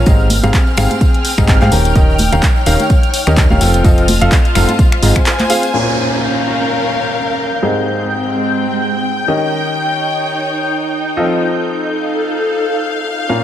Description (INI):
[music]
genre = piano house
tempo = 127 BPM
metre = 4/4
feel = swing 56% on 16ths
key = Bb dorian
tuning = A4 = 439 Hz
[part]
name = analog string pad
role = sustained chords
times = 0.0-13.4 s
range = F6 to G6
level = -23 LUFS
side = left 1 dB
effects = ensemble chorus, phaser, sidechain pumping
[part]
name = clear grand piano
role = riff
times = 0.0-13.4 s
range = Ab2 to G5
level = -18 LUFS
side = left 1 dB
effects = sidechain pumping, low-pass filter, dub echo
[part]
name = solid FM bass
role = bass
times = 0.0-5.1 s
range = Eb1 to Ab2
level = -14 LUFS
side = equal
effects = sidechain pumping
[part]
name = warm studio string section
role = texture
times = 0.0-13.4 s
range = Ab3 to A5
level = -18 LUFS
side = left 1 dB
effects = sidechain pumping
[part]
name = electronic kick drum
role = drums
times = 0.1-5.2 s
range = none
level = -12 LUFS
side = equal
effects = none
[part]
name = punchy analog drum machine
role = drums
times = 0.1-5.7 s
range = finger snaps, handclaps, hi-hat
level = -19 LUFS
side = left 1 dB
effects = none
[part]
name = tambourine and congas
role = percussion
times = 0.1-5.7 s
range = none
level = -22 LUFS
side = right 1 dB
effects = none
[part]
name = downlifter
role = sound effects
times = 5.7-9.5 s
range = none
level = -23 LUFS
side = right 2 dB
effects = none
[sound]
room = moderate lush hall reverb, RT60 1.9 s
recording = none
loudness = -11 LUFS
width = side -11 dB against mid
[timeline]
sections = 0.0-5.7 A section; 5.7-13.4 B section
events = break 5.3-5.7; filter sweep on grand piano 5.7-13.4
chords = 0.1 Abmaj7; 1.7 Eb7; 3.6 F7; 4.8 Ab6; 5.7 Bbm; 7.6 Abmaj7; 9.3 Eb7; 11.2 F7